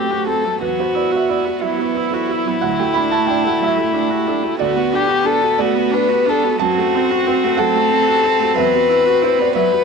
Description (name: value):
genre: neoclassical piano and strings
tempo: 60 BPM (dotted quarters)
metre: 6/8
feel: rubato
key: E minor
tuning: A4 = 439 Hz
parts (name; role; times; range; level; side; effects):
- dark violin; melody; 0.0-9.8 s; E4 to B4; -17 LUFS; left 6 dB; none
- warm cello; second line; 0.0-9.8 s; A3 to C4; -24 LUFS; right 12 dB; none
- felt-muted upright piano; accompaniment; 0.0-9.8 s; D2 to B5; -21 LUFS; right 13 dB; none
- rich viola; accompaniment; 0.0-9.8 s; F#3 to F#4; -24 LUFS; right 14 dB; none
room: light reverb, studio ambience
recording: 1960s-style stereo with parts hard left and right, nothing above 10.6 kHz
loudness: -14 LUFS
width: side -5 dB against mid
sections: 0.0-9.8 A section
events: none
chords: 0.0 F#dim; 0.6 Esus2; 2.6 D; 4.6 Bm7/D; 6.6 F#dim; 8.6 Esus2